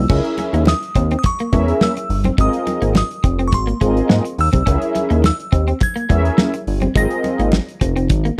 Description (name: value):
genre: early-eighties boogie funk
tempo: 105 BPM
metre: 4/4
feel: straight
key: unclear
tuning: A4 = 442 Hz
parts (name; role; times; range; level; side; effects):
- delicate synth tine bell; melody; 0.0-7.5 s; C6 to Bb6; -27 LUFS; equal; chorus, phaser
- electric guitar at the edge of break-up; riff; 0.0-8.3 s; Ab3 to Db4; -26 LUFS; equal; lush chorus
- chorused synth bass; bass; 0.0-8.3 s; F1 to Ab2; -20 LUFS; equal; none
- mellow synth brass; accompaniment; 0.1-8.4 s; C4 to Fb5; -23 LUFS; equal; chorus, phaser
- damped 70s drum kit; drums; 0.1-8.4 s; crash cymbal, hi-hat, kick drum, snare drum; -19 LUFS; equal; none
- congas; percussion; 0.1-8.2 s; none; -30 LUFS; equal; none
room: small room reverb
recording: dry, close 1970s-style studio recording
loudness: -17 LUFS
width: mono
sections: 0.1-8.4 A section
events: none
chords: 0.1 Dbm6; 2.4 Ab69; 4.7 Dbm6; 7.0 Ab69